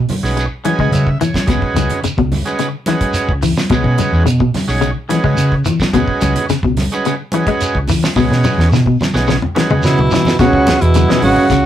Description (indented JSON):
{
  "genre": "afrobeat",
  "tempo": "108 BPM",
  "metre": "4/4",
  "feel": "straight",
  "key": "C# minor",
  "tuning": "A4 = 441 Hz",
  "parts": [
    { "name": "semi-hollow electric guitar", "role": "arpeggios", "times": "0.0-11.7 s", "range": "B2 to G#3", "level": "-18 LUFS", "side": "left 5 dB", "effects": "tremolo" },
    { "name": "hollow-body short-scale fingered electric bass", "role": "bass", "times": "0.0-11.7 s", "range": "G#1 to C#3", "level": "-16 LUFS", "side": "equal", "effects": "none" },
    { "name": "damped 70s drum kit", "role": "drums", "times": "0.1-11.6 s", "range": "hi-hat, kick drum, snare drum, toms", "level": "-20 LUFS", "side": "right 1 dB", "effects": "none" },
    { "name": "congas", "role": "percussion", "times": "0.1-11.5 s", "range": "none", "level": "-23 LUFS", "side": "right 1 dB", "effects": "none" },
    { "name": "shekere", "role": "percussion", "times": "0.1-11.6 s", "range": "none", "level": "-24 LUFS", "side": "right 1 dB", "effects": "none" },
    { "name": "overdriven combo organ", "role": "accompaniment", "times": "0.2-11.5 s", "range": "G#3 to G#5", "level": "-19 LUFS", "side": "right 3 dB", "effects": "none" },
    { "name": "breathy alto saxophone", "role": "melody", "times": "9.8-11.7 s", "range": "E4 to F#4", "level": "-16 LUFS", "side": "equal", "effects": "analog delay" },
    { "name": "warm trombone", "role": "second line", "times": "9.8-11.7 s", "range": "B2 to C#3", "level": "-16 LUFS", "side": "right 4 dB", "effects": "none" }
  ],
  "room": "moderate studio ambience, RT60 0.5 s",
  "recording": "rough rehearsal-room recording, warm saturation",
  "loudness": "-12 LUFS",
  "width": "side -11 dB against mid",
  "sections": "0.0-10.4 A section; 10.4-11.7 B section",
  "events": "transistor combo organ fill 0.4-1.5; drum fill 8.2-10.4",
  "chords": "0.0 C#m7",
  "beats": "0.37 0.93 | 1.48 2.04 2.60 3.16 | 3.71 4.27 4.83 5.38 | 5.94 6.50 7.05 7.61 | 8.17 8.72 9.28 9.84 | 10.39 10.95 11.50"
}